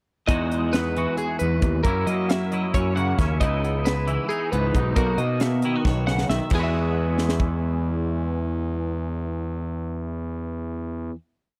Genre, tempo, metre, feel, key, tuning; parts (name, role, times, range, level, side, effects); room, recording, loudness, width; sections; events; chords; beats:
math rock and midwest emo; 270 BPM (eighths); 7/8; straight; E lydian; A4 = 441 Hz
twangy electric guitar; accompaniment; 0.3-11.2 s; E2 to F#4; -31 LUFS; equal; ensemble chorus
twelve-string electric guitar; arpeggios; 0.3-11.2 s; G#4 to F#5; -31 LUFS; equal
fuzz picked electric bass; bass; 0.3-11.1 s; B1 to F#3; -27 LUFS; equal; overdrive
crisp fusion drum kit; drums; 0.3-7.5 s; crash cymbal, hi-hat, kick drum, snare drum; -26 LUFS; equal
small room reverb; dry, close 1970s-style studio recording; -24 LUFS; mono
0.3-6.5 A section; 6.5-9.6 final chord
drum fill 5.8-6.5
0.3 Emaj9; 1.8 F#7; 3.4 C#m9; 5.0 Bmaj7; 6.5 Eadd9
| 0.29 0.51 0.73 0.95 1.18 1.40 1.62 | 1.85 2.07 2.29 2.52 2.74 2.96 3.18 | 3.40 3.63 3.85 4.07 4.29 4.52 4.74 | 4.96 5.18 5.41 5.63 5.85 6.07 6.29 | 6.52 6.74 6.96 7.18 7.41 7.63 7.85 | 8.07 8.30 8.52 8.74 8.97 9.19 9.41